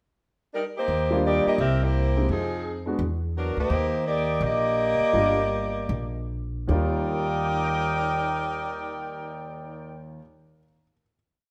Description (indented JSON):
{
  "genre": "jazz, big band swing",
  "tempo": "145-171 BPM",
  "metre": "4/4",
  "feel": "swing 63% on 8ths",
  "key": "Eb major",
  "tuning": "A4 = 443 Hz",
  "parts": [
    { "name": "mellow saxophone section", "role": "melody", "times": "0.5-10.2 s", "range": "F3 to G5", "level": "-28 LUFS", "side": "equal", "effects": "none" },
    { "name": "upright bass", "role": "bass", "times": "0.9-10.1 s", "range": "G1 to F2", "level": "-30 LUFS", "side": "equal", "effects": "none" },
    { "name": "warm concert grand piano", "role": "accompaniment", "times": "1.1-3.0, 5.1-11.1 s", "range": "Eb2 to Bb6", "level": "-32 LUFS", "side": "equal", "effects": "none" }
  ],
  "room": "moderate large studio reverb, RT60 1.2 s",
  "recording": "none",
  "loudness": "-25 LUFS",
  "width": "mono",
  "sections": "0.0-0.9 pickup bar; 0.9-6.7 A section; 6.7-10.0 final chord",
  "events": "slowing down 3.7-6.7",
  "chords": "0.0 Eb; 0.9 Ebmaj7; 1.6 C7b13; 2.3 Fm7; 3.0 Esus2; 3.7 Ebmaj7"
}